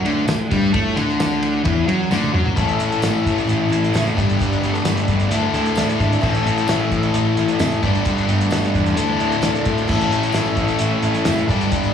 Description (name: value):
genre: classic rock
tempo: 131 BPM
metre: 4/4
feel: straight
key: A mixolydian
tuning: A4 = 440 Hz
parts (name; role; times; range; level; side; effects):
- overdriven electric guitar; riff; 0.0-11.9 s; G2 to A4; -20 LUFS; left 7 dB; slapback echo
- sludgy distorted guitar; riff; 0.0-11.9 s; A2 to E4; -25 LUFS; right 11 dB; overdrive
- fuzz picked electric bass; bass; 0.0-11.9 s; F#1 to A2; -22 LUFS; equal; overdrive
- cloth-damped thuddy drum kit; drums; 0.1-11.9 s; crash cymbal, hi-hat, kick drum, ride cymbal, snare drum, toms; -24 LUFS; equal; none
- tambourine; percussion; 0.3-11.4 s; none; -37 LUFS; right 5 dB; none
- picked twelve-string acoustic guitar; accompaniment; 2.6-11.9 s; A2 to A4; -27 LUFS; right 4 dB; none
room: light reverb, studio reverb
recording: live gig heard through the venue's PA, club reverb, small room ambience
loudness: -16 LUFS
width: side -8 dB against mid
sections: 0.0-2.6 A section; 2.6-11.9 B section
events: drum fill 2.1-2.6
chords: 0.0 D5; 2.6 A; 4.2 Gadd9; 5.3 Dsus2; 6.2 A; 7.8 Gadd9; 9.0 Dsus2; 9.9 A